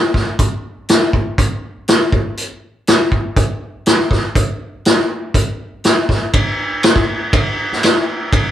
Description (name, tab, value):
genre	rock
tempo	121 BPM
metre	4/4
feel	straight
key	none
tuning	none
part	vintage drum kit	drums	0.1-8.4 s	hi-hat, kick drum, ride cymbal, snare drum	-13 LUFS	equal	none
room	light reverb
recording	band playing live in one room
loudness	-14 LUFS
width	side -11 dB against mid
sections	0.0-6.3 A section; 6.3-8.5 B section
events	none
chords	none